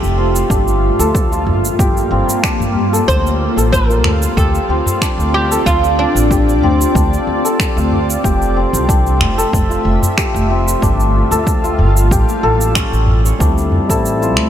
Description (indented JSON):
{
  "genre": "organic downtempo",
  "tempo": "93 BPM",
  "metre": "4/4",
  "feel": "straight",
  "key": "D minor",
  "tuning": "A4 = 438 Hz",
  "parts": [
    { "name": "granular cloud pad", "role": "sustained chords", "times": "0.0-13.4 s", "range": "G3 to E5", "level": "-20 LUFS", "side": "equal", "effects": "built-in reverb, sidechain pumping" },
    { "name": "santur", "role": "arpeggios", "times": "0.0-14.5 s", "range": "C4 to C#5", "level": "-19 LUFS", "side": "left 2 dB", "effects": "tape echo" },
    { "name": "upright bass", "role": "bass", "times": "0.0-14.5 s", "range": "F1 to G2", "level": "-16 LUFS", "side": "equal", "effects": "sidechain pumping" },
    { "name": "electronic shaker and finger snaps", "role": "drums", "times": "0.0-14.5 s", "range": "none", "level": "-22 LUFS", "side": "right 2 dB", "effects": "overdrive, studio reverb" },
    { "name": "electronic kick drum", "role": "drums", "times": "0.5-14.0 s", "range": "none", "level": "-17 LUFS", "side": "equal", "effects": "overdrive, studio reverb" },
    { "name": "udu", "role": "percussion", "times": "1.5-13.9 s", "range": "none", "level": "-20 LUFS", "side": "left 1 dB", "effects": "none" },
    { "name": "oud", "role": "melody", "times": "3.1-7.2 s", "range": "D4 to C5", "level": "-18 LUFS", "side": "equal", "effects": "tape echo" },
    { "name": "overdriven tine electric piano", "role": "accompaniment", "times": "13.4-14.5 s", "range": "G3 to E4", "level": "-18 LUFS", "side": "left 3 dB", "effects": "sidechain pumping, low-pass filter" }
  ],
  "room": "light reverb, small room ambience",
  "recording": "none",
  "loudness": "-12 LUFS",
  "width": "side -10 dB against mid",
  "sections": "0.0-13.4 A section; 13.4-14.5 A section",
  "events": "filter sweep on tine electric piano 13.4-14.5",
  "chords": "0.5 Gm7; 3.1 Dm7; 8.2 Fmaj7; 10.8 Gm7; 12.1 A7; 13.4 Dm7",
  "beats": "| 0.50 1.15 1.79 2.44 | 3.08 3.73 4.37 5.02 | 5.66 6.31 6.95 7.60 | 8.24 8.89 9.53 10.18 | 10.82 11.47 12.11 12.76 | 13.40 14.05"
}